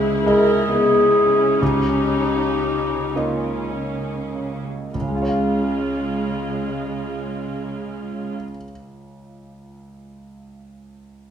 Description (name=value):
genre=cinematic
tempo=32-47 BPM (dotted quarters)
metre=6/8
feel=rubato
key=Db lydian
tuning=A4 = 437 Hz
part: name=warm chamber viola section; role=accompaniment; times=0.0-8.4 s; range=G#3 to Bb4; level=-26 LUFS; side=right 3 dB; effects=none
part: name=warm concert grand piano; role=accompaniment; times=0.0-11.3 s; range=Db2 to F5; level=-27 LUFS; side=right 1 dB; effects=none
part: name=concert harp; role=arpeggios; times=0.0-8.8 s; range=Db3 to F5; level=-24 LUFS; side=left 3 dB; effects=none
part: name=warm studio cello section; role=bass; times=0.0-8.4 s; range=Db3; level=-30 LUFS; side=right 3 dB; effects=none
part: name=mellow clarinet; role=second line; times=0.3-8.4 s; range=Db4 to G#4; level=-22 LUFS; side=left 2 dB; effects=none
room=moderate recital hall reverb, RT60 1.4 s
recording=minimal, uncompressed stereo recording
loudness=-18 LUFS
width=side -8 dB against mid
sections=0.0-4.9 A section; 4.9-8.4 B section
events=slowing down 0.0-4.9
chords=0.0 Emaj7/Db; 1.6 Eb7/Db; 4.9 Db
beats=0.26 | 1.61 3.15 | 4.94 6.70